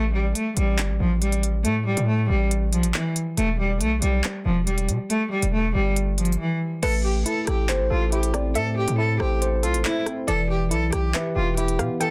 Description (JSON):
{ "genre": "hip hop, drill", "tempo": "139 BPM", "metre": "4/4", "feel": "half-time", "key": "A minor", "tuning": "A4 = 439 Hz", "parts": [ { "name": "rich cello", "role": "melody", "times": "0.0-12.1 s", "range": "E3 to A4", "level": "-27 LUFS", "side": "equal", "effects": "none" }, { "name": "hard-hitting 808-style bass", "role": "bass", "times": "0.0-11.9 s", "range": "E1 to B2", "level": "-26 LUFS", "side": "equal", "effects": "none" }, { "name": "drill drum kit", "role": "drums", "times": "0.4-12.1 s", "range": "crash cymbal, handclaps, hi-hat, rim click", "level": "-31 LUFS", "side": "equal", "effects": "none" }, { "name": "soft round pluck", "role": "second line", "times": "6.8-12.1 s", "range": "B4 to G5", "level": "-35 LUFS", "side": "equal", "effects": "chorus, tape echo" }, { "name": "tine electric piano", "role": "accompaniment", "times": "6.8-12.1 s", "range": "E3 to C5", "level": "-30 LUFS", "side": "equal", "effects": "overdrive" } ], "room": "little or no reverb", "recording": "dense, heavily limited modern master", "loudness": "-23 LUFS", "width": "mono", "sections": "0.0-6.8 A section; 6.8-12.1 B section", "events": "break 6.4-6.8", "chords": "0.0 N.C.; 3.4 Em; 6.8 Amadd9; 10.3 Em" }